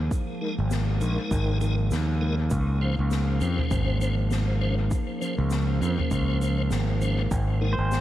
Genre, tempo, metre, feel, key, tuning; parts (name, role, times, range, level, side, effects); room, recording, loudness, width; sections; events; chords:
ambient dub; 100 BPM; 4/4; swing 58% on 16ths; A4 = 440 Hz
warbly tape-like pad; sustained chords; 0.0-8.0 s; F3 to Bb4; -32 LUFS; equal; chorus, built-in reverb
growling fingered electric bass; bass; 0.0-8.0 s; Ab1 to F2; -24 LUFS; equal; overdrive
electronic kick drum; drums; 0.1-7.5 s; -29 LUFS; equal; overdrive
soft-mallet drum kit; drums; 0.1-8.0 s; shaker, snare drum, toms; -35 LUFS; left 1 dB; dub echo
tonewheel organ; stabs; 0.4-7.8 s; F3 to C5; -32 LUFS; left 1 dB; chorus vibrato, fast rotary speaker, dub echo
pedal steel guitar; arpeggios; 7.7-8.0 s; C5; -28 LUFS; right 1 dB
small room ambience; echo-heavy mix, vinyl crackle; -23 LUFS; side -13 dB against mid
0.0-8.0 A section
0.0 Absus2; 2.5 Dbmaj7; 7.3 Absus2